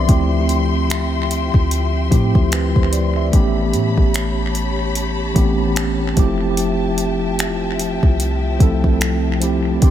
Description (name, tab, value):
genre	contemporary R&B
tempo	74 BPM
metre	4/4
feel	swing 58% on 16ths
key	unclear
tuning	A4 = 440 Hz
part	mellow tine electric piano	accompaniment	0.0-9.9 s	E3 to E5	-20 LUFS	right 1 dB	medium stereo tremolo, tape echo
part	warm studio string section	sustained chords	0.0-9.9 s	F3 to C6	-26 LUFS	left 5 dB	none
part	clean 808-style bass	bass	0.0-9.9 s	F1 to A2	-20 LUFS	equal	none
part	smooth R&B drum kit	drums	0.1-9.9 s	finger snaps, hi-hat, kick drum	-17 LUFS	equal	none
room	little or no reverb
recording	echo-heavy mix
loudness	-15 LUFS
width	side -11 dB against mid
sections	0.0-9.9 A section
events	none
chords	0.1 Dm11; 3.3 A9; 6.2 Fmaj9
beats	| 0.09 0.90 1.71 2.52 | 3.33 4.14 4.96 5.77 | 6.58 7.39 8.20 9.01 | 9.82